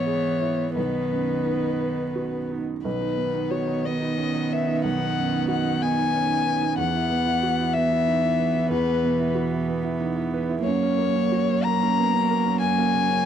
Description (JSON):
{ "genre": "neoclassical piano and strings", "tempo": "56-63 BPM (dotted quarters)", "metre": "6/8", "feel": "rubato", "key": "B major", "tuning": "A4 = 440 Hz", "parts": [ { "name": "dark violin", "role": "melody", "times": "0.0-13.3 s", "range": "B4 to A#5", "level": "-25 LUFS", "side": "left 8 dB", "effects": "none" }, { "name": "warm cello", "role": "second line", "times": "0.0-13.3 s", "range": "D#3 to F#3", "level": "-29 LUFS", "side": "right 4 dB", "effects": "none" }, { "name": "felt-muted upright piano", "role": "accompaniment", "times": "0.0-13.3 s", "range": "B1 to B4", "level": "-28 LUFS", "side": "right 5 dB", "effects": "none" }, { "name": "warm viola", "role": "accompaniment", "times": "0.0-13.3 s", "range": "A#3 to B3", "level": "-27 LUFS", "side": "right 2 dB", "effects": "none" } ], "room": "small room ambience", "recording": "dry, close 1970s-style studio recording", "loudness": "-21 LUFS", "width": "side -9 dB against mid", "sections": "0.0-2.9 A section; 2.9-13.3 B section", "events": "none", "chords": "0.0 E6/G#; 0.8 B; 6.8 Esus2; 10.6 F#" }